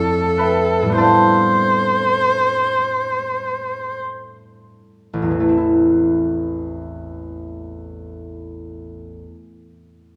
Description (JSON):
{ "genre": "classical, impressionist duo for viola and harp", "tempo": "26-36 BPM (dotted quarters)", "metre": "6/8", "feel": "rubato", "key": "A minor", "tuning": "A4 = 442 Hz", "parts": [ { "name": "warm viola", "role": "melody", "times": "0.0-4.0 s", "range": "A4 to C5", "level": "-19 LUFS", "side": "equal", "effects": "none" }, { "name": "concert harp", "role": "accompaniment", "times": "0.0-9.7 s", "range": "A1 to C6", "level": "-21 LUFS", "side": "equal", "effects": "none" } ], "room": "moderate recital hall reverb, RT60 1.4 s", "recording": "none", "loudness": "-17 LUFS", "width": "mono", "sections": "0.0-5.1 A section; 5.1-9.7 B section", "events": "slowing down 0.0-5.1", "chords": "0.0 Fmaj7; 1.0 Am11; 5.1 Am" }